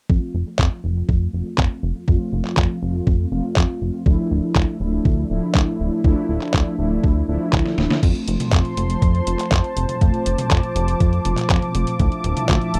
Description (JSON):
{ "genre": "italo disco", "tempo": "121 BPM", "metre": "4/4", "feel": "straight", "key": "F major", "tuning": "A4 = 441 Hz", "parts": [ { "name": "mellow synth brass", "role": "stabs", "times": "0.1-12.8 s", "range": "F3 to F4", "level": "-27 LUFS", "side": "equal", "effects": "chorus, tape echo" }, { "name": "chorused synth bass", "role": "bass", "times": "0.1-12.8 s", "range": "D1 to F2", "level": "-24 LUFS", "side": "equal", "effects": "none" }, { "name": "electronic kick drum", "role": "drums", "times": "0.1-12.6 s", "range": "none", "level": "-20 LUFS", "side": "equal", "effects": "none" }, { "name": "detuned 8-bit digital drum machine", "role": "drums", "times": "0.6-12.8 s", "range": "crash cymbal, handclaps, hi-hat, snare drum, toms", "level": "-26 LUFS", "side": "equal", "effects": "none" }, { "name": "warm analog pad", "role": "sustained chords", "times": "8.3-12.8 s", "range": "F3 to D6", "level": "-27 LUFS", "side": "equal", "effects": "chorus" } ], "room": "little or no reverb", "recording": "dry, close 1970s-style studio recording", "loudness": "-20 LUFS", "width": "mono", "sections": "0.1-8.0 A section; 8.0-12.8 B section", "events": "filter sweep on analog synth bass 0.1-8.0; filter sweep on analog polysynth 0.1-8.0; drum fill 7.7-8.0", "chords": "0.1 F; 4.1 Dmadd9; 8.0 F; 12.0 Dmadd9", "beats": "| 0.09 0.59 1.09 1.58 | 2.08 2.57 3.07 3.56 | 4.06 4.56 5.05 5.55 | 6.04 6.54 7.04 7.53 | 8.03 8.52 9.02 9.52 | 10.01 10.51 11.00 11.50 | 11.99 12.49" }